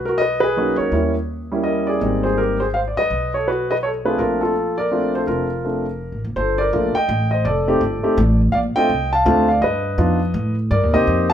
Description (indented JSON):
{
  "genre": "jazz piano trio",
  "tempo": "166 BPM",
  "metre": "3/4",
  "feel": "swing 63% on 8ths",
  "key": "G minor from 6.4 s",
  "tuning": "A4 = 440 Hz",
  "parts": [
    { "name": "warm concert grand piano", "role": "melody", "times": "0.0-11.3 s", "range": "F#3 to A5", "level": "-18 LUFS", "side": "equal", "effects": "none" },
    { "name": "upright bass", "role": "bass", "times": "0.0-11.3 s", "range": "F1 to A2", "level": "-22 LUFS", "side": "equal", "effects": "none" }
  ],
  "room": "light reverb",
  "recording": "band playing live in one room",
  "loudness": "-17 LUFS",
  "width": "side -9 dB against mid",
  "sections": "0.0-6.4 A section; 6.4-11.3 B section",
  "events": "none",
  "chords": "0.0 Bmaj7; 0.9 Eb7b9; 2.0 Abmaj7; 3.1 B5; 4.2 Bbmaj7; 6.4 Gmadd9; 7.5 F7; 8.5 Bbmaj9; 9.6 G7b13; 10.7 Cm7"
}